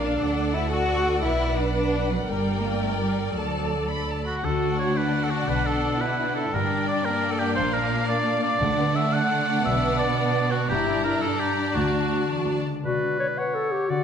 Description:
cinematic, heroic adventure film score; 115 BPM (dotted quarters); 6/8; straight; D major; A4 = 439 Hz
rich chamber violin section; melody; 0.0-12.6 s; F5 to B5; -34 LUFS; left 2 dB
clear symphonic violin section; second line; 0.0-12.6 s; D4 to D5; -32 LUFS; left 3 dB
rich symphonic viola section; accompaniment; 0.0-12.6 s; A3 to B4; -29 LUFS; equal
rich symphonic double bass section; bass; 0.0-12.1 s; G1 to D2; -30 LUFS; right 3 dB
warm studio cello section; bass; 0.0-12.8 s; C#2 to F#4; -28 LUFS; right 2 dB
clear oboe; second line; 4.3-14.0 s; F#4 to F#5; -26 LUFS; right 1 dB
concert harp; arpeggios; 4.4-14.0 s; G2 to B5; -30 LUFS; left 6 dB
timpani; percussion; 8.6-9.1 s; D3; -33 LUFS; right 1 dB
mellow clarinet; second line; 12.8-14.0 s; F#4 to C#5; -25 LUFS; left 2 dB
hollow concert flute; second line; 12.9-14.0 s; D5 to F#5; -32 LUFS; left 4 dB
moderate scoring stage reverb, RT60 1.5 s; -22 LUFS; side -8 dB against mid
0.0-4.4 A section; 4.4-12.8 A section; 12.8-14.0 B section
0.2 D; 1.2 Bm; 2.3 Gm; 3.3 D; 5.5 Bm; 6.5 Gm; 7.6 Bb; 8.6 D; 9.7 Bm; 10.7 Gm; 11.8 D; 12.8 Bm

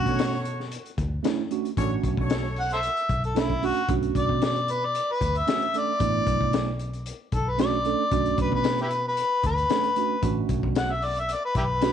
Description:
straight-eighth soul blues; 114 BPM; 4/4; straight; B minor; A4 = 441 Hz
mellow harmonica; melody; 0.0-11.9 s; E4 to F#5; -26 LUFS; left 2 dB; overdrive
mellow tine electric piano; accompaniment; 0.0-11.9 s; A3 to A4; -28 LUFS; right 13 dB; phaser
vintage muted picked electric bass; bass; 0.0-11.9 s; A1 to B2; -29 LUFS; equal
brilliant horn section; sustained chords; 0.1-2.7 s; D4 to C#5; -35 LUFS; left 1 dB
crunchy breakbeat drum kit; drums; 0.1-11.9 s; hi-hat, kick drum, snare drum; -29 LUFS; left 4 dB; vintage 12-bit sampler grit
light reverb, studio reverb; 1960s-style stereo; -23 LUFS; side -9 dB against mid
0.0-3.9 A section; 3.9-11.9 B section
harmonica solo 3.9-11.9
0.0 Bm9

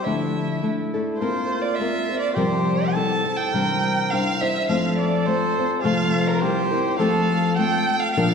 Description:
mexican folk, mariachi; 104 BPM; 2/4; straight; F major; A4 = 437 Hz
warm violin; melody; 0.0-8.3 s; Bb4 to A5; -25 LUFS; right 2 dB
clear trumpet; second line; 0.0-8.1 s; E4 to Bb4; -27 LUFS; right 3 dB
nylon-string guitar; accompaniment; 0.0-8.3 s; Bb2 to C5; -22 LUFS; left 3 dB
wet scoring stage reverb, RT60 1.8 s; heard from further back in the room; -19 LUFS; side -6 dB against mid
0.0-8.2 A section
0.0 Dmadd9; 1.2 Bbsus2; 2.4 C7sus4; 2.9 C6; 3.5 Cadd9; 4.7 F; 5.9 F/C; 6.4 C7; 7.0 F

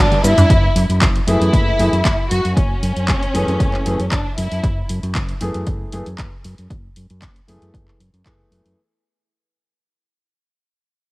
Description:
nu-disco, nu disco; 116 BPM; 4/4; straight; F# minor; A4 = 437 Hz
warm symphonic violin section; melody; 0.0-4.9 s; C#4 to F#4; -21 LUFS; equal; cassette tape, analog delay
dark symphonic string section; sustained chords; 0.0-0.5 s; G3 to B4; -35 LUFS; left 1 dB
fingered electric bass; bass; 0.0-8.7 s; F#1 to G2; -20 LUFS; equal
house drum kit; drums; 0.1-8.8 s; handclaps, hi-hat, shaker, toms; -21 LUFS; equal; cassette tape
electronic kick drum; drums; 0.5-8.4 s; -18 LUFS; equal; cassette tape
clear grand piano; accompaniment; 1.3-8.8 s; E3 to G#4; -24 LUFS; equal; sidechain pumping, cassette tape, analog delay
light reverb; home recording on cassette; -15 LUFS; side -21 dB against mid
0.5-8.8 A section
drum fill 0.0-0.5; band accent 0.0; fade-out 0.5-8.8
0.5 F#m11

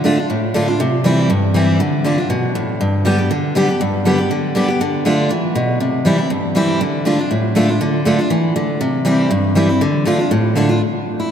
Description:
bluegrass; 240 BPM; 4/4; swing 53% on 8ths; D dorian; A4 = 440 Hz
picked steel-string acoustic guitar; solo; 0.0-11.3 s; G2 to G4; -14 LUFS; equal
wet cathedral reverb, RT60 5.1 s; in a vast, echoing space; -14 LUFS; side -8 dB against mid
0.0-2.8 A section; 2.8-10.8 B section
0.0 Dm; 0.8 C; 1.8 Dm; 2.8 G; 4.8 Dm; 5.8 C; 6.8 Dm; 8.8 C; 9.8 Dm

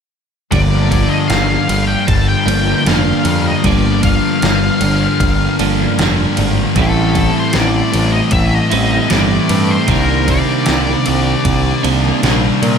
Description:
rock, shoegaze and dream pop; 77 BPM; 4/4; straight; G minor; A4 = 440 Hz
octave-fuzz lead guitar; melody; 0.5-11.8 s; A4 to A5; -20 LUFS; left 2 dB; distortion, diffuse ambient delay
clean electric guitar; riff; 0.5-12.8 s; G2 to E4; -18 LUFS; right 11 dB; reverse reverb
thick fuzz guitar; riff; 0.5-12.8 s; G2 to C4; -17 LUFS; left 9 dB; distortion, lush chorus
growling picked electric bass; bass; 0.5-12.8 s; F1 to Bb2; -17 LUFS; equal; overdrive
detuned 8-bit digital drum machine; drums; 0.5-12.8 s; kick drum, ride cymbal, snare drum; -19 LUFS; equal
light reverb, digital ambience; -11 LUFS; side -7 dB against mid
0.5-12.8 A section
0.5 Gm7; 6.8 Am7; 9.9 Cm9

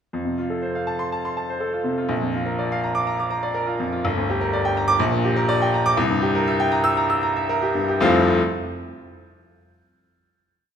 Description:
classical, virtuoso piano study; 122 BPM; 4/4; uneven beats, rubato; F major; A4 = 440 Hz
bright grand piano; solo; 0.1-8.4 s; F1 to E6; -19 LUFS; equal
wet recital hall reverb, RT60 1.8 s; minimal, uncompressed stereo recording; -19 LUFS; side -8 dB against mid
0.1-8.0 A section; 8.0-10.1 final chord
0.1 F; 2.1 Bb; 4.0 Gm; 5.0 Gm/Bb; 6.0 C7; 8.0 F

